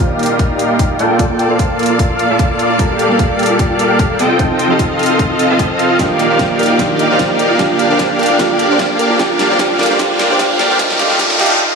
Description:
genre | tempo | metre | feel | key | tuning
future bass | 150 BPM | 4/4 | swing 54% on 16ths, half-time | G minor | A4 = 440 Hz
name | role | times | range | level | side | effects
soft round pluck | accompaniment | 0.0-11.6 s | D3 to D5 | -20 LUFS | right 3 dB | chorus, sidechain pumping, analog delay
clear studio string section | sustained chords | 0.0-11.8 s | Eb3 to A5 | -22 LUFS | left 2 dB | sidechain pumping
dense compressed supersaw | riff | 0.0-11.6 s | A3 to G5 | -13 LUFS | equal | sidechain pumping, low-pass filter, analog delay
soft round pluck | arpeggios | 0.1-11.6 s | F4 to C6 | -24 LUFS | right 2 dB | none
dubstep drum kit | drums | 0.2-11.6 s | hi-hat, snare drum | -22 LUFS | equal | none
electronic kick drum | drums | 0.4-11.3 s | none | -16 LUFS | left 1 dB | overdrive
riser | sound effects | 8.6-11.6 s | none | -21 LUFS | right 2 dB | none
room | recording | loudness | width
wet plate reverb, RT60 1.2 s, digital ambience | dreamy mix soaked in reverb, high-pass filter, studio ambience | -11 LUFS | side -5 dB against mid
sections
0.0-11.8 A section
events
build-up 0.0-11.8; filter sweep on supersaw synth 0.0-11.8; filter sweep 0.0-11.8; drum fill 6.0-11.6; riser 8.6-11.6; break 11.6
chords
0.0 Ebmaj9; 1.2 Bbmaj7; 2.8 Gm9; 4.4 F7; 6.0 Ebmaj9; 7.6 Gm9; 10.8 F7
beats
0.39 0.79 | 1.19 1.59 1.99 2.39 | 2.79 3.19 3.59 3.99 | 4.39 4.79 5.19 5.59 | 5.99 6.39 6.79 7.19 | 7.59 7.99 8.39 8.79 | 9.19 9.59 9.99 10.39 | 10.79 11.19 11.59

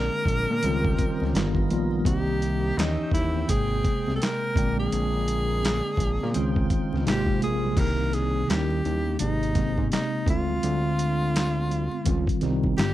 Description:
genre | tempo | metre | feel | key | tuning
R&B, neo-soul | 84 BPM | 4/4 | swing 63% on 16ths | Ab lydian | A4 = 440 Hz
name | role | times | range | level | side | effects
breathy tenor saxophone | melody | 0.0-12.9 s | Eb4 to Bb4 | -29 LUFS | equal | none
mellow tine electric piano | accompaniment | 0.0-12.9 s | C3 to G5 | -28 LUFS | equal | medium stereo tremolo
tonewheel organ | sustained chords | 0.0-7.8 s | C3 to G5 | -37 LUFS | right 2 dB | overdrive, lush chorus
fat analog bass | bass | 0.0-12.9 s | G1 to Bb2 | -27 LUFS | equal | none
congas | percussion | 0.1-12.8 s | none | -40 LUFS | right 10 dB | none
dusty soul sampler-style drum kit | drums | 0.3-12.9 s | crash cymbal, handclaps, hi-hat, kick drum, snare drum | -27 LUFS | equal | overdrive
room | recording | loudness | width
little or no reverb | dry, close 1970s-style studio recording | -22 LUFS | side -14 dB against mid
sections
0.0-7.8 A section; 7.8-12.9 B section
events
none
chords
0.0 Bb13; 0.6 Dbmaj9#11; 1.3 G7alt; 2.1 Cm7; 2.8 Eb7b9; 3.5 Abmaj9; 4.6 Bb13; 6.3 Dbmaj9#11; 7.1 Ab69; 7.8 Cm7; 8.5 Eb7b9; 9.2 Abmaj9; 10.3 Dm7b5; 12.1 Dbmaj9#11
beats
0.62 1.34 | 2.05 2.77 3.48 4.20 | 4.91 5.62 6.34 7.05 | 7.77 8.48 9.20 9.91 | 10.62 11.34 12.05 12.77

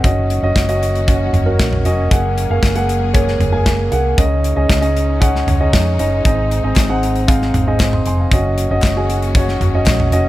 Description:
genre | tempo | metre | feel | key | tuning
piano-driven pop | 116 BPM | 4/4 | straight | unclear | A4 = 442 Hz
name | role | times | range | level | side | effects
dark concert grand piano | accompaniment | 0.0-10.3 s | Ab2 to Eb6 | -18 LUFS | right 1 dB | none
dark studio string section | sustained chords | 0.0-10.3 s | Eb3 to Ab4 | -27 LUFS | left 3 dB | none
vintage muted fingered electric bass | bass | 0.0-10.3 s | F1 to F2 | -18 LUFS | equal | none
modern studio drum kit | drums | 0.0-10.2 s | hi-hat, kick drum, snare drum, toms | -16 LUFS | equal | none
group handclap | percussion | 6.8-10.0 s | none | -33 LUFS | left 8 dB | none
room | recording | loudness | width
small room ambience | none | -13 LUFS | side -16 dB against mid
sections
0.0-10.3 A section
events
none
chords
0.0 Ebm7/Gb; 2.1 Gbadd9; 4.2 Dbsus2; 6.2 Ab; 8.3 Ebm7/Gb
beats
| 0.04 0.56 1.08 1.59 | 2.11 2.63 3.15 3.66 | 4.18 4.70 5.21 5.73 | 6.25 6.77 7.28 7.80 | 8.32 8.84 9.35 9.87

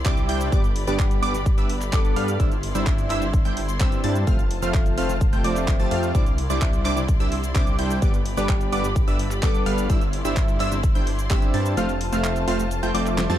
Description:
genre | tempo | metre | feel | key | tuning
EDM, festival progressive house | 128 BPM | 4/4 | straight | C major | A4 = 441 Hz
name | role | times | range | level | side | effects
picked plugged-in steel-string acoustic guitar | accompaniment | 0.0-13.4 s | G2 to A4 | -29 LUFS | left 1 dB | sidechain pumping, digital delay
clear symphonic string section | sustained chords | 0.0-13.4 s | E4 to C6 | -34 LUFS | left 1 dB | sidechain pumping
wide detuned saw bass | bass | 0.0-13.4 s | F1 to G2 | -27 LUFS | equal | chorus, sidechain pumping
wide unison pluck | arpeggios | 0.1-13.4 s | D6 to A6 | -32 LUFS | right 2 dB | phaser, sidechain pumping, digital delay
supersaw stab | riff | 0.1-13.4 s | G3 to A5 | -27 LUFS | right 1 dB | sidechain pumping, digital delay
electronic kick drum | drums | 0.1-11.4 s | none | -21 LUFS | equal | small room ambience
pop drum kit | drums | 0.1-13.4 s | cabasa, handclaps, hi-hat, snare drum | -33 LUFS | right 1 dB | small room ambience
room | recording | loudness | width
little or no reverb | dark, warm production | -19 LUFS | side -12 dB against mid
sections
0.0-13.4 A section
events
kick drops out 11.8-13.4; drum fill 13.2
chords
0.0 Cadd9; 0.5 G; 2.4 Cadd9/G; 4.3 F; 6.1 Cadd9; 8.0 G; 9.9 Cadd9/G; 11.8 F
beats
0.05 | 0.52 0.99 1.46 1.93 | 2.40 2.87 3.33 3.80 | 4.27 4.74 5.21 5.68 | 6.15 6.62 7.08 7.55 | 8.02 8.49 8.96 9.43 | 9.90 10.37 10.84 11.30 | 11.77 12.24 12.71 13.18

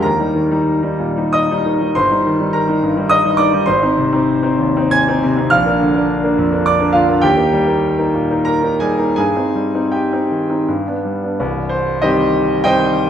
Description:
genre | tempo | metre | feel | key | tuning
classical, romantic character piece for solo piano | 79-107 BPM | 3/4 | rubato | C minor from 3.7 s | A4 = 440 Hz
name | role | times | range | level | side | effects
bright concert grand piano | solo | 0.0-13.1 s | C1 to Ab6 | -13 LUFS | equal | none
room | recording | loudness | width
wet recital hall reverb, RT60 1.5 s | none | -13 LUFS | side -9 dB against mid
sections
0.0-11.4 A section; 11.4-13.1 B section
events
none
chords
0.0 Eb; 1.9 Eb/G; 3.7 Ab; 5.5 Bb; 7.2 Eb; 9.2 Cm/G; 10.7 G; 11.4 Cm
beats
| 0.04 0.66 1.33 | 1.95 2.53 3.10 | 3.67 4.27 4.92 | 5.51 6.08 6.65 | 7.23 7.83 8.47 | 9.18 9.93 10.68 | 11.39 12.02 12.65

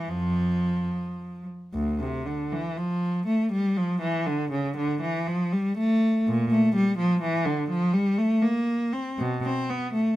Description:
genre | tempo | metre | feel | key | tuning
classical, baroque-style suite movement for unaccompanied cello | 104-126 BPM | 3/4 | rubato | D minor | A4 = 445 Hz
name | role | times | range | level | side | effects
rich cello | solo | 0.0-10.2 s | D2 to C4 | -23 LUFS | equal | none
room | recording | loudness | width
light reverb | minimal, uncompressed stereo recording | -23 LUFS | side -15 dB against mid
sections
0.0-1.7 A section; 1.7-10.2 A section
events
none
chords
none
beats
| 0.11 0.65 1.18 | 1.74 2.27 2.77 | 3.27 3.76 4.26 | 4.76 5.27 5.77 | 6.26 6.74 7.22 | 7.70 8.19 8.68 | 9.19 9.69

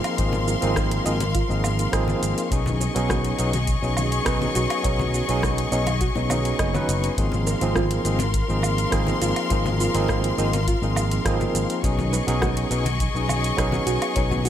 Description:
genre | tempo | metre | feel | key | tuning
sunset chillout | 103 BPM | 4/4 | straight | Ab major | A4 = 439 Hz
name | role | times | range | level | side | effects
barky tine electric piano | accompaniment | 0.0-14.5 s | F3 to B4 | -26 LUFS | right 1 dB | overdrive, fast tremolo, auto-pan, ping-pong delay
warm studio string section | sustained chords | 0.0-14.5 s | G#4 to C#6 | -28 LUFS | left 4 dB | none
soft round pluck | arpeggios | 0.0-14.5 s | F4 to Eb5 | -32 LUFS | right 2 dB | chorus, ping-pong delay
deep house drum kit | drums | 0.0-14.5 s | hi-hat, rim click, shaker, woodblock | -30 LUFS | right 2 dB | overdrive, studio reverb
sustaining fretless electric bass | bass | 0.2-14.5 s | F#1 to B1 | -25 LUFS | equal | tube saturation, ensemble chorus
electronic kick drum | drums | 0.2-14.3 s | none | -27 LUFS | equal | studio reverb
congas and bongos | percussion | 0.3-14.5 s | none | -32 LUFS | left 3 dB | none
room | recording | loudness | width
light reverb, digital ambience | none | -20 LUFS | side -10 dB against mid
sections
0.0-14.5 A section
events
none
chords
0.0 Ab69; 2.5 B69; 7.2 Ab69; 11.8 B69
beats
| 0.19 0.77 1.35 1.93 | 2.52 3.10 3.68 4.26 | 4.85 5.43 6.01 6.59 | 7.18 7.76 8.34 8.92 | 9.51 10.09 10.67 11.25 | 11.84 12.42 13.00 13.58 | 14.17

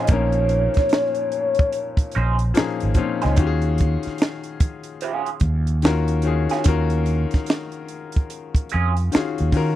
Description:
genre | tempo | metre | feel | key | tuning
R&B, neo-soul | 73 BPM | 4/4 | swing 61% on 16ths | unclear | A4 = 439 Hz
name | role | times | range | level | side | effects
hollow clarinet-like synth lead | melody | 0.0-3.0 s | Db5 to Eb5 | -22 LUFS | left 1 dB | chorus, phaser, slapback echo
electric guitar through a small old amp | second line | 0.0-8.9 s | Gb3 to C5 | -25 LUFS | right 6 dB | wah
clear concert grand piano | accompaniment | 0.0-9.8 s | Bb2 to Bb4 | -26 LUFS | left 6 dB | none
fretless electric bass | bass | 0.1-9.8 s | Ab1 to Eb3 | -20 LUFS | equal | none
compact cocktail drum kit | drums | 0.1-9.8 s | finger snaps, hi-hat, kick drum, snare drum | -20 LUFS | right 1 dB | none
room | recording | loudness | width
little or no reverb | dry, close 1970s-style studio recording | -18 LUFS | side -13 dB against mid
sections
0.0-9.8 A section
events
none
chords
0.0 Bbm11; 3.4 Ebm11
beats
| 0.08 0.91 1.73 2.55 | 3.37 4.19 5.02 5.84 | 6.66 7.48 8.30 9.13

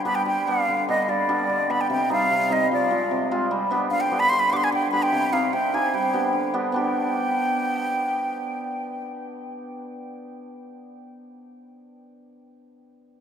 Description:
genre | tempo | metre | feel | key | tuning
klezmer | 149 BPM | 2/4 | straight | G phrygian dominant | A4 = 440 Hz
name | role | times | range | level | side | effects
hammered dulcimer | accompaniment | 0.0-10.9 s | C3 to G4 | -26 LUFS | equal | none
breathy concert flute | melody | 0.1-9.1 s | D5 to D6 | -23 LUFS | equal | none
room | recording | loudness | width
wet cathedral reverb, RT60 6.1 s | in a vast, echoing space | -20 LUFS | side -8 dB against mid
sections
0.3-6.7 A section; 6.7-8.3 B section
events
speeding up 0.0-8.3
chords
0.3 G; 1.9 Cm; 2.7 Fm; 3.5 G; 5.1 Cm; 5.9 G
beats
| 0.26 0.67 | 1.08 1.49 | 1.89 2.30 | 2.71 3.11 | 3.52 3.92 | 4.33 4.73 | 5.13 5.53 | 5.93 6.33 | 6.73 7.13 | 7.53 7.92

